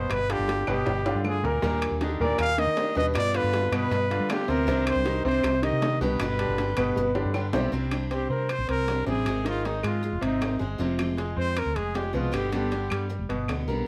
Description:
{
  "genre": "latin, Cuban son and guajira",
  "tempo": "157 BPM",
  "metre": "4/4",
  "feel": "straight",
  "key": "unclear",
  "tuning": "A4 = 440 Hz",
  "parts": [
    { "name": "breathy trumpet", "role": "melody", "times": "0.0-13.1 s", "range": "Eb4 to F5", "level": "-31 LUFS", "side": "equal", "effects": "none" },
    { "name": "bright grand piano", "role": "arpeggios", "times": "0.0-13.8 s", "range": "Bb2 to C5", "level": "-31 LUFS", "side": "equal", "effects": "none" },
    { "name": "woody fretless electric bass", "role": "bass", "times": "0.0-13.8 s", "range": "F1 to G3", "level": "-32 LUFS", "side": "equal", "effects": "none" },
    { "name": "bongos", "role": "percussion", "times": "0.1-7.6 s", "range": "none", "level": "-40 LUFS", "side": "equal", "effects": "none" },
    { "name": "claves", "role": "percussion", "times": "0.1-13.7 s", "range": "none", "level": "-42 LUFS", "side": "equal", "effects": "none" },
    { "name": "timbales", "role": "percussion", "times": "0.1-13.7 s", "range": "none", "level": "-38 LUFS", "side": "equal", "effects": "none" },
    { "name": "picked steel-string acoustic guitar", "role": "accompaniment", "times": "1.6-13.9 s", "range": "B2 to Ab4", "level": "-36 LUFS", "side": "equal", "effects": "none" }
  ],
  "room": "moderate studio reverb, RT60 0.8 s",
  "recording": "none",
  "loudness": "-26 LUFS",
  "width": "mono",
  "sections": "0.0-7.7 A section; 7.7-13.9 B section",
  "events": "drum fill 0.7-1.6, 7.0-7.7",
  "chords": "0.1 G7; 1.6 Ebmaj7; 3.2 G7; 4.7 Cmadd9; 6.2 G; 7.7 Csus2; 9.3 Ab; 10.8 Fm; 12.3 G"
}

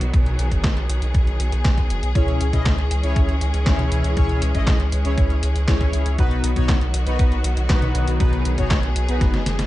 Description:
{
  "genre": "italo disco",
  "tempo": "119 BPM",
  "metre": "4/4",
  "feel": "straight",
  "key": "unclear",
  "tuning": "A4 = 440 Hz",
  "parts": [
    { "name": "bright studio string section", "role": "sustained chords", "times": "0.0-9.7 s", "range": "D#3 to G#4", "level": "-28 LUFS", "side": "left 1 dB", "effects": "none" },
    { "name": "round analog bass", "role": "bass", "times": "0.0-9.7 s", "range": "F#1 to C#2", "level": "-21 LUFS", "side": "equal", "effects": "tube saturation" },
    { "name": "detuned 8-bit digital drum machine", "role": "drums", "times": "0.0-9.7 s", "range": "congas, handclaps, hi-hat, snare drum", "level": "-25 LUFS", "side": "equal", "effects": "gated reverb" },
    { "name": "electronic kick drum", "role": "drums", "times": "0.1-9.3 s", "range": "none", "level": "-19 LUFS", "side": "equal", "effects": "none" },
    { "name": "analog synth brass", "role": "stabs", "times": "2.2-9.4 s", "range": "B3 to D#5", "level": "-26 LUFS", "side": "left 3 dB", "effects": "chorus, ping-pong delay" }
  ],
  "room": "little or no reverb",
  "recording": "nothing above 10.5 kHz",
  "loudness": "-17 LUFS",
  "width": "side -16 dB against mid",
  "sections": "0.0-9.7 A section",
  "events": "drum fill 9.2-9.7",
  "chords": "0.0 B; 2.2 C#m; 6.2 B"
}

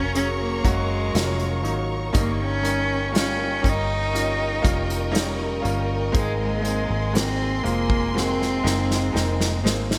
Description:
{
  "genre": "pop ballad",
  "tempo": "60 BPM",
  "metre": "4/4",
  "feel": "straight",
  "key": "unclear",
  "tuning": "A4 = 442 Hz",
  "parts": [
    { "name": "rich cello", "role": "melody", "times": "0.0-9.6 s", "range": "Ab3 to Eb4", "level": "-29 LUFS", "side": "equal", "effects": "digital delay" },
    { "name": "bright upright piano", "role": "accompaniment", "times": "0.0-10.0 s", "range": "G2 to Ab4", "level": "-31 LUFS", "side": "equal", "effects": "none" },
    { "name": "warm studio string section", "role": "sustained chords", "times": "0.0-10.0 s", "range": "Bb4 to Db6", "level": "-34 LUFS", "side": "equal", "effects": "none" },
    { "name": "fingerpicked steel-string acoustic guitar", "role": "arpeggios", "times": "0.0-10.0 s", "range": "Ab2 to Bb4", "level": "-36 LUFS", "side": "equal", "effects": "none" },
    { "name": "vintage muted fingered electric bass", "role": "bass", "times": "0.0-10.0 s", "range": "F1 to Ab1", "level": "-29 LUFS", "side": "equal", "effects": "none" },
    { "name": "unplugged drum kit", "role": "drums", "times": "0.2-10.0 s", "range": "hi-hat, kick drum, snare drum", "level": "-27 LUFS", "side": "equal", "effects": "gated reverb" }
  ],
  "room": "light reverb, studio reverb",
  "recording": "bright 1980s-style digital production",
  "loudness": "-23 LUFS",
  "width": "mono",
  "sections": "0.0-10.0 A section",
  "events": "drum fill 8.1-10.0",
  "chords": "0.0 Gb; 2.1 Eb7/G; 6.1 Abadd9"
}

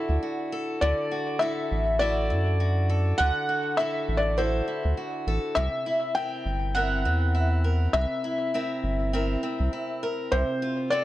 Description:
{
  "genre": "folktronica",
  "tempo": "101 BPM",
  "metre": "4/4",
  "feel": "swing 56% on 16ths",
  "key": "D mixolydian",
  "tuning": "A4 = 439 Hz",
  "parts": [
    { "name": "felt-muted upright piano", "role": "melody", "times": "0.0-11.0 s", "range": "C5 to G5", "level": "-28 LUFS", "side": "equal", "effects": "tape echo" },
    { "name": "picked old ladder-braced acoustic guitar", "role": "arpeggios", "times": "0.0-11.0 s", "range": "C3 to Bb4", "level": "-30 LUFS", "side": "equal", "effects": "tape echo" },
    { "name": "round analog bass", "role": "bass", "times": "0.1-10.4 s", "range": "G1 to F#2", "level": "-25 LUFS", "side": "equal", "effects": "tube saturation" }
  ],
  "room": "light reverb, small room ambience",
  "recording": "nothing above 10.8 kHz",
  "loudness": "-24 LUFS",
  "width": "side -15 dB against mid",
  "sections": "0.0-11.0 A section",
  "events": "none",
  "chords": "0.0 Dadd9; 5.6 C7; 10.3 F"
}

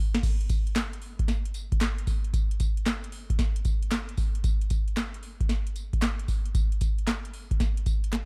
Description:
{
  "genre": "R&B",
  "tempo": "114 BPM",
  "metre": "4/4",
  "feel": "swing 66% on 16ths",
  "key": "none",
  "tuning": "none",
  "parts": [
    { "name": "booming analog drum machine", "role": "drums", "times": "0.1-8.3 s", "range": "crash cymbal, handclaps, hi-hat, kick drum, snare drum, tambourine", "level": "-28 LUFS", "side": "equal", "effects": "overdrive" },
    { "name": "group handclap", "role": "percussion", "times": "0.8-8.3 s", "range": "none", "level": "-45 LUFS", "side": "equal", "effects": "none" }
  ],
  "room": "little or no reverb",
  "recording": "none",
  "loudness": "-28 LUFS",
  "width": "mono",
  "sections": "0.0-8.3 A section",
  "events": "drum fill 0.0",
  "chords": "none"
}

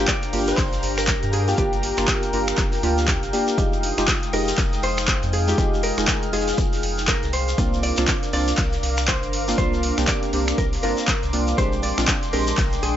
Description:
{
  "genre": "deep house",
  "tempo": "120 BPM",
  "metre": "4/4",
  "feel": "swing 59% on 16ths",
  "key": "F dorian",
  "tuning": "A4 = 441 Hz",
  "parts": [
    { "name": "airy breathy pad", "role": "sustained chords", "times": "0.0-13.0 s", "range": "Ab3 to F6", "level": "-32 LUFS", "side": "equal", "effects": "chorus, sidechain pumping" },
    { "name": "deep mellow chord stab", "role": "stabs", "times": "0.0-12.5 s", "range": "Ab3 to Bb4", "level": "-25 LUFS", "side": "equal", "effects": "chorus, sidechain pumping, tape echo" },
    { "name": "round analog bass", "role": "bass", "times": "0.0-13.0 s", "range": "F1 to G2", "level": "-26 LUFS", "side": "equal", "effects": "tube saturation, sidechain pumping" },
    { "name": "warbly tape-like pad", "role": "texture", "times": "0.0-13.0 s", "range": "D4 to C6", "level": "-30 LUFS", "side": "left 1 dB", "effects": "chorus, built-in reverb, phaser, sidechain pumping" },
    { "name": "vintage hollow-body jazz guitar", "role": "melody", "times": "0.1-13.0 s", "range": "G4 to D5", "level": "-29 LUFS", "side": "equal", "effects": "tape echo" },
    { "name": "damped 70s drum kit", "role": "drums", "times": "0.1-13.0 s", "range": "hi-hat, shaker, snare drum", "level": "-38 LUFS", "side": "right 1 dB", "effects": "none" },
    { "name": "deep house drum kit", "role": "drums", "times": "0.1-12.9 s", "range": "finger snaps, handclaps, hi-hat", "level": "-26 LUFS", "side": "equal", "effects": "overdrive, studio reverb" },
    { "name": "electronic kick drum", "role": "drums", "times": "0.1-12.7 s", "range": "none", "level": "-24 LUFS", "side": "equal", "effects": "studio reverb" },
    { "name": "shekere", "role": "percussion", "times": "0.1-12.8 s", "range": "none", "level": "-33 LUFS", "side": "left 3 dB", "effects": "none" }
  ],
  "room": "light reverb, small room ambience",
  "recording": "nothing above 7.7 kHz",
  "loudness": "-19 LUFS",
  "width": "side -11 dB against mid",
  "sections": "0.0-13.0 A section",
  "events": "none",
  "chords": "0.0 Gm7; 3.6 Fm9; 7.3 C9sus4; 11.6 Bb13"
}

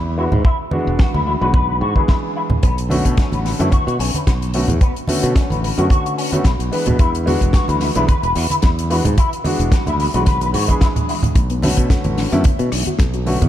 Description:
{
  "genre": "nu-disco, nu disco",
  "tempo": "110 BPM",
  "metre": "4/4",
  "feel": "swing 55% on 16ths",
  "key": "B dorian",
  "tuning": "A4 = 439 Hz",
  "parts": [
    { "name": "modern bright fingered electric bass", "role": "bass", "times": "0.0-13.5 s", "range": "E1 to B2", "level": "-20 LUFS", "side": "equal", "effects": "none" },
    { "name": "warm grand piano", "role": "accompaniment", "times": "0.2-13.4 s", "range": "D3 to B4", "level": "-22 LUFS", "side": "equal", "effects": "sidechain pumping, low-pass filter, analog delay" },
    { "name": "electric guitar with an envelope filter", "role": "riff", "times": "0.2-11.1 s", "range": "B3 to B4", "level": "-23 LUFS", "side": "left 3 dB", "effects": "ensemble chorus, analog delay" },
    { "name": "congas", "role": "percussion", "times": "0.3-13.5 s", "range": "none", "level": "-24 LUFS", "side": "right 1 dB", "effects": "none" },
    { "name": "kick drum", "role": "drums", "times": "0.4-13.1 s", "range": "none", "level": "-15 LUFS", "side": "equal", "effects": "small room reverb" },
    { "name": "damped 70s drum kit", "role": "drums", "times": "1.0-13.5 s", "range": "hi-hat, rim click, snare drum", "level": "-26 LUFS", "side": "left 2 dB", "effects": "small room reverb" },
    { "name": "soft round pluck", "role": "arpeggios", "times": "11.4-13.5 s", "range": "A3 to A4", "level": "-26 LUFS", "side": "left 4 dB", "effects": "chorus, sidechain pumping, ping-pong delay" }
  ],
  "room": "light reverb, small room ambience",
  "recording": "none",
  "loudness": "-14 LUFS",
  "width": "side -12 dB against mid",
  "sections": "0.0-13.5 A section",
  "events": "none",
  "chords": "0.0 E7; 2.6 Bm7; 7.0 E7; 11.4 Bm7"
}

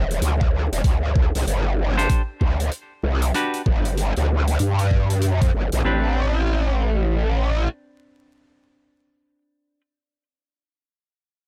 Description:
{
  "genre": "glitch hop",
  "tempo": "96 BPM",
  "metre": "4/4",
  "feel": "swing 62% on 16ths",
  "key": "A minor",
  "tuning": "A4 = 439 Hz",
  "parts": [
    { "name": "growl bass", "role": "bass", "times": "0.0-7.7 s", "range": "E1 to G2", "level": "-22 LUFS", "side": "equal", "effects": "chorus" },
    { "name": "hi-hat", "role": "drums", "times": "0.1-5.8 s", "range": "none", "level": "-35 LUFS", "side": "equal", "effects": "none" },
    { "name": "electronic kick drum", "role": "drums", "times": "0.4-5.5 s", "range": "none", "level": "-22 LUFS", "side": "equal", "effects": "none" },
    { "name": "semi-hollow electric guitar", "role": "stabs", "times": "2.0-9.8 s", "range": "C4 to C5", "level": "-29 LUFS", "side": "equal", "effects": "sidechain pumping, delay" }
  ],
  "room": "small room ambience",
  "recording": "vinyl crackle",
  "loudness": "-21 LUFS",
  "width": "mono",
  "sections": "0.0-5.8 A section; 5.8-8.3 B section",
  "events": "none",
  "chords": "0.0 E7(no3); 0.8 D7sus4; 3.3 G; 5.8 Am11"
}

